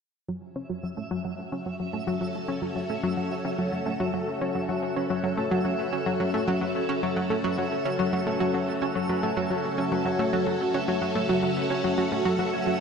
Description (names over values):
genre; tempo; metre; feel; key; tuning
ambient, sequencer-driven space music; 109 BPM; 4/4; straight; F# minor; A4 = 440 Hz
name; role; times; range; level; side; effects
string machine, full ensemble; sustained chords; 0.3-12.8 s; C#4 to A4; -30 LUFS; equal; phaser, ensemble chorus
analog pluck; riff; 0.3-12.8 s; F#3 to C#4; -28 LUFS; equal; chorus, tape echo
twinkling granular texture; texture; 0.7-12.8 s; E5; -36 LUFS; right 3 dB; built-in reverb
Celtic harp; arpeggios; 4.7-12.8 s; F#3 to F#5; -32 LUFS; left 4 dB; auto-pan, tape echo
room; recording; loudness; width
wet lush hall reverb, RT60 2.6 s; dreamy mix soaked in reverb; -25 LUFS; side -6 dB against mid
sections
0.3-4.7 A section; 4.7-12.8 B section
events
fade-in on string machine 0.3-4.7; filter sweep on synth arpeggio sound 0.3-4.7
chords
0.3 F#m